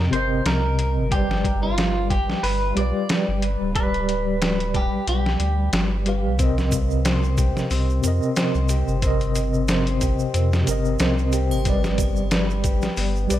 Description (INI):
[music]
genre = trip hop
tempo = 91 BPM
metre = 4/4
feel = swing 56% on 16ths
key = C minor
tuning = A4 = 440 Hz
[part]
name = clean electric guitar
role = melody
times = 0.0-5.7 s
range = F4 to D5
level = -27 LUFS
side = right 1 dB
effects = tremolo, tape echo
[part]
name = mellow tine electric piano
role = accompaniment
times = 0.0-13.4 s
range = C3 to F5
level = -25 LUFS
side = equal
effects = medium stereo tremolo, tape echo
[part]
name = warm sub bass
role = bass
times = 0.0-13.4 s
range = D1 to F2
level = -23 LUFS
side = equal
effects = tube saturation
[part]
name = trip hop sampler-style drum kit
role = drums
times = 0.1-13.4 s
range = hi-hat, kick drum, snare drum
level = -24 LUFS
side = equal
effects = studio reverb
[part]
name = concert harp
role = arpeggios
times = 6.4-13.4 s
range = B3 to C5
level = -29 LUFS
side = left 4 dB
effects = vintage 12-bit sampler grit, dub echo
[part]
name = tube shaker and triangle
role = percussion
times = 6.4-13.4 s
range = none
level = -37 LUFS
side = right 6 dB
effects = dub echo
[sound]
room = light reverb, digital ambience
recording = echo-heavy mix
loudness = -19 LUFS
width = side -13 dB against mid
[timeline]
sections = 0.0-13.4 A section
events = none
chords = 0.0 Cm7; 1.1 G; 6.4 Cm7; 11.7 G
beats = 0.46 | 1.12 1.77 2.43 3.09 | 3.75 4.41 5.07 5.73 | 6.39 7.05 7.71 8.37 | 9.03 9.69 10.35 11.01 | 11.66 12.32 12.98